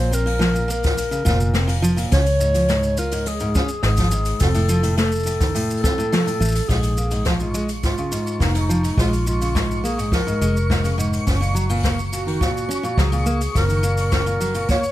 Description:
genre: folktronica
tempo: 105 BPM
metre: 4/4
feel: straight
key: Bb minor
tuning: A4 = 443 Hz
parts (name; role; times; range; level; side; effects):
- breathy clarinet; melody; 0.0-14.9 s; Eb4 to Db5; -25 LUFS; left 1 dB; plate reverb, digital delay
- picked steel-string acoustic guitar; arpeggios; 0.0-14.8 s; Ab2 to F4; -24 LUFS; equal; plate reverb
- vintage muted fingered electric bass; bass; 0.0-14.9 s; F1 to Db2; -22 LUFS; equal; none
- jazz brush drum kit; drums; 0.1-14.9 s; hi-hat, shaker, snare drum; -28 LUFS; left 2 dB; none
- kick drum; drums; 0.8-14.8 s; none; -22 LUFS; equal; none
- twinkling granular texture; texture; 7.4-14.9 s; Db6 to Db7; -32 LUFS; equal; built-in reverb, plate reverb
room: light reverb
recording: none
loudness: -18 LUFS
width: side -14 dB against mid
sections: 0.0-6.7 A section; 6.7-14.9 B section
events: none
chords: 0.0 Bbsus2; 2.1 Db; 4.4 F; 6.7 Bbm7; 11.3 Gb

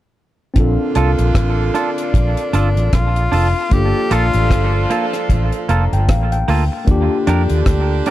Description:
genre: lovers rock reggae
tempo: 76 BPM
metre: 4/4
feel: swing 59% on 16ths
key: Bb major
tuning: A4 = 438 Hz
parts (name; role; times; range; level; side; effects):
- tine electric piano; accompaniment; 0.5-8.1 s; Bb3 to Bb5; -23 LUFS; left 3 dB; none
- clear saxophone section; second line; 0.6-8.1 s; D3 to A4; -25 LUFS; right 4 dB; none
- vintage muted fingered electric bass; bass; 0.6-8.0 s; F1 to F2; -16 LUFS; equal; none
- deep reggae drum kit; drums; 0.6-8.1 s; hi-hat, kick drum, rim click; -18 LUFS; equal; none
- twangy electric guitar; stabs; 1.0-8.1 s; Bb3 to Bb4; -23 LUFS; right 4 dB; tape echo
- breathy tenor saxophone; melody; 1.8-8.1 s; D4 to G4; -22 LUFS; left 3 dB; tape echo
room: small room ambience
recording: dark, warm production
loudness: -14 LUFS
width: side -14 dB against mid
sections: 0.6-8.1 A section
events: tine electric piano fill 5.3-6.9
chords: 0.6 Bbmaj7; 3.7 Gm9; 6.9 Ebmaj7

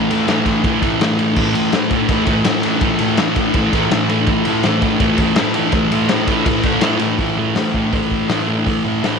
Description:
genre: garage rock duo or trio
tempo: 165 BPM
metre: 4/4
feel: straight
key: unclear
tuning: A4 = 440 Hz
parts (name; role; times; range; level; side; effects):
- thick fuzz guitar; riff; 0.0-9.2 s; A2 to A3; -15 LUFS; equal; distortion
- raw garage drum kit; drums; 0.1-9.1 s; crash cymbal, hi-hat, kick drum, ride cymbal, snare drum; -19 LUFS; left 2 dB; none
room: light reverb, small room ambience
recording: 1960s-style stereo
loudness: -14 LUFS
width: side -5 dB against mid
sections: 0.0-7.2 A section; 7.2-9.2 B section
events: none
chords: 0.0 A5

